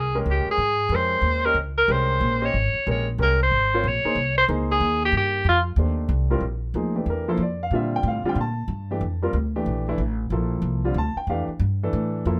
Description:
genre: modal jazz.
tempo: 185 BPM.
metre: 3/4.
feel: swing 63% on 8ths.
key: Db lydian, Bb lydian from 6.4 s.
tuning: A4 = 440 Hz.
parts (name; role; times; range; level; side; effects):
warm tenor saxophone; melody; 0.0-5.6 s; F4 to Db5; -23 LUFS; equal; none.
upright bass; bass; 0.0-12.4 s; Ab1 to Bb2; -27 LUFS; equal; none.
warm grand piano; accompaniment; 0.1-12.4 s; A2 to A5; -29 LUFS; equal; none.
room: light reverb.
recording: none.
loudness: -23 LUFS.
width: mono.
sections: 0.0-6.4 A section; 6.4-12.4 A section.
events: tenor saxophone solo 0.0-6.4.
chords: 0.0 Dbmaj7sus2; 5.5 F7; 6.4 Bbmaj7.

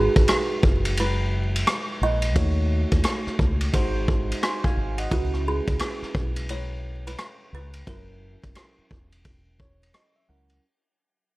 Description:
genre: hip hop, jazz-hop.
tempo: 87 BPM.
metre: 4/4.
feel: swing 63% on 16ths.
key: G# minor.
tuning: A4 = 440 Hz.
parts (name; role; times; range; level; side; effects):
kalimba; melody; 0.0-9.9 s; F#4 to D#5; -28 LUFS; right 3 dB; none.
tine electric piano; accompaniment; 0.0-10.6 s; F#3 to B#5; -31 LUFS; equal; lush chorus.
deep dub fingered electric bass; bass; 0.0-10.6 s; E1 to D#2; -26 LUFS; equal; none.
vintage drum kit; drums; 0.2-10.6 s; hi-hat, kick drum, ride cymbal, rim click; -24 LUFS; equal; none.
room: small room ambience.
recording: vinyl crackle.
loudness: -21 LUFS.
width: side -20 dB against mid.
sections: 0.0-10.6 A section.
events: fade-out 0.0-10.6; tine electric piano fill 9.3-10.6.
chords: 0.0 G#m7; 2.4 D#m7b5; 3.7 G#7; 5.1 C#m7; 7.9 F#7.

